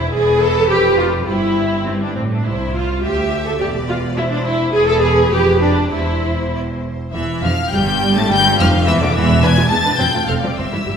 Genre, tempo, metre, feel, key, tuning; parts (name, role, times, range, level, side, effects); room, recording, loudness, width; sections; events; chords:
quick classical-period movement for string orchestra; 104 BPM; 2/4; rubato; C major; A4 = 441 Hz
rich chamber violin section; second line; 0.0-11.0 s; G4 to A5; -23 LUFS; left 3 dB
rich symphonic viola section; accompaniment; 0.0-10.9 s; D3 to C5; -17 LUFS; right 1 dB
rich studio cello section; bass; 0.0-10.9 s; C2 to A2; -21 LUFS; right 1 dB
warm chamber double bass section; bass; 0.0-10.9 s; E1 to D2; -22 LUFS; right 2 dB
clear chamber violin section; melody; 0.1-11.0 s; B4 to A6; -23 LUFS; left 5 dB
wet scoring stage reverb, RT60 1.7 s; recorded in a church or concert hall; -14 LUFS; side -7 dB against mid
0.0-7.1 A section; 7.1-11.0 A section
0.1 E7; 0.7 F5; 1.3 C/G; 1.9 G; 2.5 C; 3.6 C/E; 4.7 E7; 5.3 G7/F; 5.9 C/E; 7.1 Fmaj9; 8.3 Em7; 9.4 E; 10.0 F